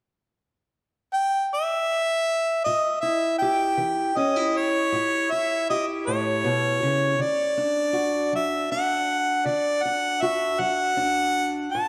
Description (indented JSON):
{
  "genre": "acoustic country blues, solo or duo",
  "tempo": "53 BPM (dotted quarters)",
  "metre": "12/8",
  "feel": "straight",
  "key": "A mixolydian",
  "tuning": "A4 = 440 Hz",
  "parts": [
    { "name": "clear harmonica", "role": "melody", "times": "1.1-11.9 s", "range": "C#5 to A5", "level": "-25 LUFS", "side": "equal", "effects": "tape echo" },
    { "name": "fingerpicked steel-string acoustic guitar", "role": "accompaniment", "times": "2.7-11.9 s", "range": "A2 to G4", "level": "-30 LUFS", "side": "equal", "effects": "none" }
  ],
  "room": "wet lush hall reverb, RT60 2.1 s",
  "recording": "dreamy mix soaked in reverb",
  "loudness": "-24 LUFS",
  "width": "mono",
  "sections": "0.0-2.7 A section; 2.7-11.9 B section",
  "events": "none",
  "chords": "0.0 N.C.; 2.7 A7; 7.2 D"
}